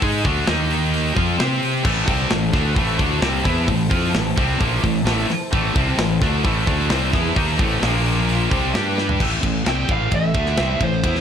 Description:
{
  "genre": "heavy metal",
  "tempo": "131 BPM",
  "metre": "4/4",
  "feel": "straight",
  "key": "A phrygian",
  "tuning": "A4 = 440 Hz",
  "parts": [
    { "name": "high-gain distorted guitar", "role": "riff", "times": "0.0-9.2 s", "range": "A2 to C5", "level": "-26 LUFS", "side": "equal", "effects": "distortion" },
    { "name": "scooped high-gain guitar", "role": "riff", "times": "0.0-11.2 s", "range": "A2 to C5", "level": "-25 LUFS", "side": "left 14 dB", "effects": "distortion" },
    { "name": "scooped high-gain guitar", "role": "riff", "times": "0.0-11.2 s", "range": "A2 to C5", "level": "-24 LUFS", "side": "right 10 dB", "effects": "distortion" },
    { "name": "fuzz fingered electric bass", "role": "bass", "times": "0.0-11.2 s", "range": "A1 to C3", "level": "-23 LUFS", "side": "equal", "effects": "overdrive" },
    { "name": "tight metal drum kit", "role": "drums", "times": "0.0-11.2 s", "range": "crash cymbal, hi-hat, kick drum, ride cymbal, snare drum, toms", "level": "-23 LUFS", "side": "equal", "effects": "none" },
    { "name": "rich studio string section", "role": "sustained chords", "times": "1.9-9.2 s", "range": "Bb3 to D6", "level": "-32 LUFS", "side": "left 1 dB", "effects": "none" },
    { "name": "high-gain lead guitar", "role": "melody", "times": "9.7-11.2 s", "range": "C5 to G5", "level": "-23 LUFS", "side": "right 2 dB", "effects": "distortion" }
  ],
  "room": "light reverb",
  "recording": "dark, warm production",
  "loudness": "-17 LUFS",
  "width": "side -8 dB against mid",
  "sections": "0.0-9.2 A section; 9.2-11.2 B section",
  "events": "drum fill 9.0",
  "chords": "0.5 D#5; 1.2 F5; 1.4 C5; 1.9 Am; 7.8 Bb5; 8.5 Am; 8.7 G5; 9.2 Am",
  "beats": "| 0.02 0.48 0.94 1.40 | 1.85 2.31 2.77 3.23 | 3.69 4.15 4.61 5.06 | 5.52 5.98 6.44 6.90 | 7.36 7.82 8.28 8.74 | 9.20 9.66 10.12 10.58 | 11.04"
}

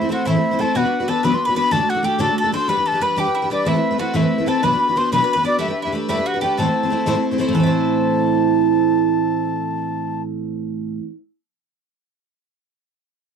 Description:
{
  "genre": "celtic folk, Celtic jig",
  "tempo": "124 BPM (dotted quarters)",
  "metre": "6/8",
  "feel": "straight",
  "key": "A dorian",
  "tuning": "A4 = 437 Hz",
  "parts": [
    { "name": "bright baroque flute", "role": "melody", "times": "0.0-10.2 s", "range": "D5 to C6", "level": "-21 LUFS", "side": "left 3 dB", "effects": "none" },
    { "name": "mandolin", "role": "second line", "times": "0.0-10.9 s", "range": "D4 to C5", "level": "-27 LUFS", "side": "right 6 dB", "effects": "none" },
    { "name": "picked twelve-string acoustic guitar", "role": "accompaniment", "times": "0.0-11.2 s", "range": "A2 to C5", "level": "-19 LUFS", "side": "right 1 dB", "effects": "none" }
  ],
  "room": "moderate booth ambience, RT60 0.2 s",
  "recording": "dry, close 1970s-style studio recording",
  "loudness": "-16 LUFS",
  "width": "side -6 dB against mid",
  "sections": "0.0-7.5 A section; 7.5-9.5 B section",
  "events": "none",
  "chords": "0.0 Am; 0.7 Bm; 1.7 D/A; 2.7 G; 3.7 Amadd9; 4.6 Bm; 5.6 Gadd9; 6.6 Am",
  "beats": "0.26 | 0.74 1.23 | 1.72 2.20 | 2.69 3.17 | 3.66 4.14 | 4.63 5.11 | 5.60 6.08 | 6.56 7.05 | 7.53 8.01 | 8.50 8.98"
}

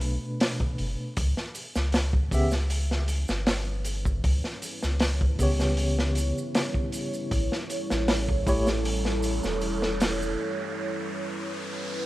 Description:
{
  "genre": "trip hop",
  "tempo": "78 BPM",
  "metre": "4/4",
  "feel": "straight",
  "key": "unclear",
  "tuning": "A4 = 442 Hz",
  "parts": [
    { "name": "tine electric piano", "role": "accompaniment", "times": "0.0-8.7 s", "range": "B2 to E5", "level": "-30 LUFS", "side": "equal", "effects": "tremolo, vintage 12-bit sampler grit, tape echo" },
    { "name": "soft dub sub bass", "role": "bass", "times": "0.0-10.4 s", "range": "E1 to C#2", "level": "-27 LUFS", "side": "equal", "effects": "none" },
    { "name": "crunchy breakbeat drum kit", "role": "drums", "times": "0.0-10.2 s", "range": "hi-hat, kick drum, snare drum", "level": "-28 LUFS", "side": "equal", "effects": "none" },
    { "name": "deep dark ambient pad", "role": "sustained chords", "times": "2.8-12.1 s", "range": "G3 to C#5", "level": "-32 LUFS", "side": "right 1 dB", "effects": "chorus, built-in reverb" },
    { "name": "maracas", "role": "percussion", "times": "1.2-10.4 s", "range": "none", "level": "-43 LUFS", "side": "right 3 dB", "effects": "none" },
    { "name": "riser", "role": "sound effects", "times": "8.4-12.1 s", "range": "none", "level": "-38 LUFS", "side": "right 3 dB", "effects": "none" }
  ],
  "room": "light reverb, small room ambience",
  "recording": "rough home demo mix, vinyl crackle",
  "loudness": "-24 LUFS",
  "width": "side -16 dB against mid",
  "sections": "0.0-12.1 A section",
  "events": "riser 8.4-12.1; break 10.4-12.1",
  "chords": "0.0 Bm7; 1.2 C#m7b5; 7.3 A7",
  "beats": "0.40 | 1.17 1.94 2.70 3.47 | 4.24 5.01 5.78 6.55 | 7.32 8.09 8.86 9.63 | 10.40 11.16 11.94"
}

